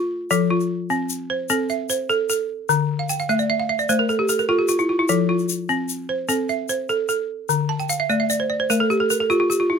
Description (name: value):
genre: west african traditional, West African string and xylophone music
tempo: 100 BPM (dotted quarters)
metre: 12/8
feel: straight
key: F major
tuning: A4 = 440 Hz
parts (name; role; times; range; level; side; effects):
- balafon; arpeggios; 0.0-9.8 s; D3 to A5; -19 LUFS; equal; none
- tube shaker; percussion; 0.3-9.6 s; none; -28 LUFS; left 8 dB; none
room: light reverb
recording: close, detailed microphones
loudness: -19 LUFS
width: side -6 dB against mid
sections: 0.0-9.8 A section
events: balafon fill 3.0-5.1, 7.7-9.8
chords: 0.3 F; 2.7 Dm; 5.1 F; 7.5 Dm